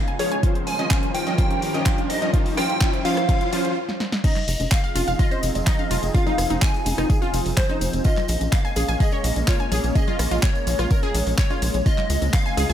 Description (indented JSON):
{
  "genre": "progressive house",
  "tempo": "126 BPM",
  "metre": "4/4",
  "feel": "straight",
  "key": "F minor",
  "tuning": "A4 = 443 Hz",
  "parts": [
    { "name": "plucky unison lead", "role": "melody", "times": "0.0-12.7 s", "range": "C5 to Ab5", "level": "-28 LUFS", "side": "equal", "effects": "phaser, tape echo" },
    { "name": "soft synth bell", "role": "second line", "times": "0.0-12.7 s", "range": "C5 to Ab5", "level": "-34 LUFS", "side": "equal", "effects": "none" },
    { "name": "lush unison pad", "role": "sustained chords", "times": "0.0-12.7 s", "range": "Db3 to Bb4", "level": "-31 LUFS", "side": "equal", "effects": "chorus, phaser, sidechain pumping" },
    { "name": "riser", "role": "sound effects", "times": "0.0-3.8 s", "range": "none", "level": "-31 LUFS", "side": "right 1 dB", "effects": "none" },
    { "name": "wide unison pluck", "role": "arpeggios", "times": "0.1-12.7 s", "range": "Eb4 to Ab5", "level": "-29 LUFS", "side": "equal", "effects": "sidechain pumping, tape echo" },
    { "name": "deep house drum kit", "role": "drums", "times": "0.1-12.7 s", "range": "crash cymbal, handclaps, hi-hat, ride cymbal, rim click, snare drum", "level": "-30 LUFS", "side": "equal", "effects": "overdrive, sidechain pumping on hats, sidechain pumping on cymbals" },
    { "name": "supersaw stab", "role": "stabs", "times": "0.2-3.7 s", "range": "F3 to Eb5", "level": "-27 LUFS", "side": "equal", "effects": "sidechain pumping, tape echo" },
    { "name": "tight sequencer bass", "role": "bass", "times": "0.2-12.7 s", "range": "Eb1 to Db2", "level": "-25 LUFS", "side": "equal", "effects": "sidechain pumping, high-pass filter" },
    { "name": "electronic kick drum", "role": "drums", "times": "0.4-12.4 s", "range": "none", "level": "-20 LUFS", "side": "equal", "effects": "overdrive" },
    { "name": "congas and bongos", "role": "percussion", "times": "4.2-12.7 s", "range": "none", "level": "-34 LUFS", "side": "left 4 dB", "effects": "sidechain pumping on perc" },
    { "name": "tambourine", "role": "percussion", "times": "4.2-12.7 s", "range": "none", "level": "-38 LUFS", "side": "left 5 dB", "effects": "none" }
  ],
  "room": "light reverb",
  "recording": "none",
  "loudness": "-19 LUFS",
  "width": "side -10 dB against mid",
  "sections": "0.0-4.2 A section; 4.2-12.7 B section",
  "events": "build-up 0.0-4.2; riser 0.0-3.8; stop 3.8-4.2; drum fill 3.9-4.2; drop 4.2-12.7",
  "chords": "0.4 Ebadd9; 4.2 Fm7; 8.1 Bbm7; 11.9 Dbmaj7"
}